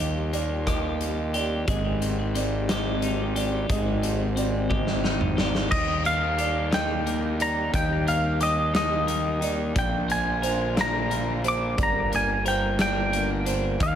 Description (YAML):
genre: post-rock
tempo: 59 BPM (dotted quarters)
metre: 6/8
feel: straight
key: unclear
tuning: A4 = 440 Hz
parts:
  - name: muted studio string section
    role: sustained chords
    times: 0.0-14.0 s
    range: D3 to Bb4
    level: -35 LUFS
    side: left 2 dB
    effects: none
  - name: felt-muted upright piano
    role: arpeggios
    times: 0.0-14.0 s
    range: C5 to D6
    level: -33 LUFS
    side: right 8 dB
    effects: digital delay
  - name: twelve-string electric guitar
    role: arpeggios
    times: 0.0-14.0 s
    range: G2 to Bb4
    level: -31 LUFS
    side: left 2 dB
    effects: digital delay
  - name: fuzz fingered electric bass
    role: bass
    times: 0.0-14.0 s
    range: G1 to Eb2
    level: -28 LUFS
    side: equal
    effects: overdrive
  - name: big rock drum kit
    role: drums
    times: 0.0-14.0 s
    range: crash cymbal, hi-hat, kick drum, rim click, snare drum, toms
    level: -29 LUFS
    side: left 1 dB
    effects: none
  - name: twangy electric guitar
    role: melody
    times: 5.7-14.0 s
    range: Eb5 to D6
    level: -26 LUFS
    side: equal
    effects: digital delay
room: light reverb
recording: none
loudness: -22 LUFS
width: side -9 dB against mid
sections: 0.0-5.7 A section; 5.7-14.0 B section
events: drum fill 4.7-5.7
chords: 0.0 Ebmaj7; 1.7 Abmaj7; 5.7 Eb; 9.8 Bb; 11.8 Gm